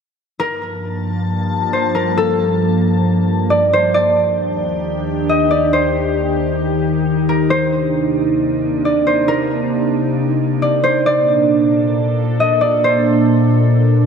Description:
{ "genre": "hip hop", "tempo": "135 BPM", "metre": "4/4", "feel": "half-time", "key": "G minor", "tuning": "A4 = 444 Hz", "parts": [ { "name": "concert harp", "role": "melody", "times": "0.4-14.1 s", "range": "A4 to Eb5", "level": "-17 LUFS", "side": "equal", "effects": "digital delay" }, { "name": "glassy FM pad", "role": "sustained chords", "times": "0.7-14.1 s", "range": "Eb2 to A5", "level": "-16 LUFS", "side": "equal", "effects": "ensemble chorus, built-in reverb" } ], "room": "wet lush hall reverb, RT60 2.6 s", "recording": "none", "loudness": "-14 LUFS", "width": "side -6 dB against mid", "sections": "0.4-14.1 A section", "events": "none", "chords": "0.4 Gm9; 4.0 Ebmaj7; 7.5 Cm9; 11.1 Bbmaj7" }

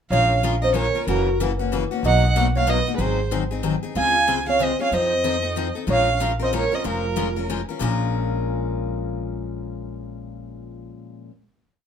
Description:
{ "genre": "acoustic string swing (jazz manouche)", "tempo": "187 BPM", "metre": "3/4", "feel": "swing 61% on 8ths", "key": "Bb minor", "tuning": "A4 = 439 Hz", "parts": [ { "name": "warm violin", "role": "melody", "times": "0.1-7.5 s", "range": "Bb4 to Ab5", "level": "-23 LUFS", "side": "right 4 dB", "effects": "none" }, { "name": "warm velvety synth lead", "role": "second line", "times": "0.1-7.5 s", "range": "F4 to F5", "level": "-24 LUFS", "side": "right 2 dB", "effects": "chorus, tremolo" }, { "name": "picked steel-string acoustic guitar", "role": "accompaniment", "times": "0.1-11.3 s", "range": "Bb2 to Bb4", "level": "-26 LUFS", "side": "left 6 dB", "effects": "none" }, { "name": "upright bass", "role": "bass", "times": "0.1-10.9 s", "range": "F1 to F2", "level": "-25 LUFS", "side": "equal", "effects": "none" } ], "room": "light reverb", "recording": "minimal, uncompressed stereo recording", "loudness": "-19 LUFS", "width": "side -8 dB against mid", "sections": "0.1-7.8 A section; 7.8-9.7 final chord", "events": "none", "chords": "0.1 Bbm7; 1.1 Gb7; 2.0 Bmaj7; 3.0 Ab7; 4.0 Dbmaj7; 4.9 F7; 5.9 Bbm7" }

